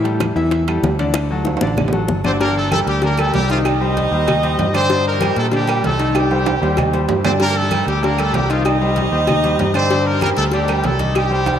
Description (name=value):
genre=latin, salsa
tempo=192 BPM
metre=4/4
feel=straight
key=G minor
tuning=A4 = 436 Hz
part: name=bright grand piano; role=accompaniment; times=0.0-11.6 s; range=D3 to E5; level=-20 LUFS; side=left 2 dB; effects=none
part: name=fingered electric bass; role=bass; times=0.0-11.6 s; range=G1 to Bb2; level=-21 LUFS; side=equal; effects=none
part: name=bongos and cowbell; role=percussion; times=0.1-11.6 s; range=none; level=-25 LUFS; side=left 3 dB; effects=none
part: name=congas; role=percussion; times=0.1-11.6 s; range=none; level=-28 LUFS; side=left 1 dB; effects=none
part: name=timbales and agogo bells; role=percussion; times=0.1-11.6 s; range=none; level=-24 LUFS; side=right 7 dB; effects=none
part: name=claves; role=percussion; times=0.2-11.3 s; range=none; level=-36 LUFS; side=right 8 dB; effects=none
part: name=brilliant horn section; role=melody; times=2.3-11.6 s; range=F3 to Eb5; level=-21 LUFS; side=equal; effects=none
room=wet cathedral reverb, RT60 5.1 s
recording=in a vast, echoing space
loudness=-15 LUFS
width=side -9 dB against mid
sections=0.0-2.4 A section; 2.4-11.6 B section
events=drum fill 1.1-2.4, 6.2-7.4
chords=0.0 A5; 1.1 D; 2.4 Gm; 3.6 Cm; 4.9 Gm; 6.2 Cm; 7.4 Gm; 8.7 Cm; 9.9 Gm